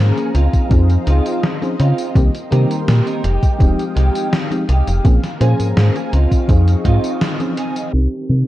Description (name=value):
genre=vaporwave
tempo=83 BPM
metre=4/4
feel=straight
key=unclear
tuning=A4 = 440 Hz
part: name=mellow FM electric piano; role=accompaniment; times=0.0-8.5 s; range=Eb3 to C5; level=-22 LUFS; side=left 1 dB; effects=analog chorus, analog delay
part: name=lush unison pad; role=sustained chords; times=0.0-8.5 s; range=Eb3 to Eb6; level=-31 LUFS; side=equal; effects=chorus, phaser
part: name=slap-like FM bass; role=bass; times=0.0-8.4 s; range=Eb1 to Db3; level=-13 LUFS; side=equal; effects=none
part: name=clean electric guitar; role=riff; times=0.2-8.5 s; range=Ab3 to Bb4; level=-24 LUFS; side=right 2 dB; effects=ensemble chorus, low-pass filter, analog delay
part: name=gated 80s digital drum machine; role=drums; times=0.2-8.4 s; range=crash cymbal, hi-hat, snare drum, tambourine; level=-23 LUFS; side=equal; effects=gated reverb, gated reverb snare, low-pass filter on hats, low-pass filter on perc, low-pass filter on snare, low-pass filter on cymbals, low-pass filter on room
part: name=electronic kick drum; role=drums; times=0.5-7.0 s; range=none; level=-14 LUFS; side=equal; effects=none
part: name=clear alto saxophone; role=melody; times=7.9-8.5 s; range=G4 to Bb4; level=-33 LUFS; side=right 1 dB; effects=none
room=little or no reverb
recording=dark, warm production, cassette tape, low-pass filter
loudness=-13 LUFS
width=side -15 dB against mid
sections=0.0-7.9 A section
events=band accent 7.2-7.6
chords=0.3 Dbmaj9; 2.2 Cm7; 3.2 Fm9; 5.0 Bbm7; 6.1 Dbmaj9; 7.9 Cm7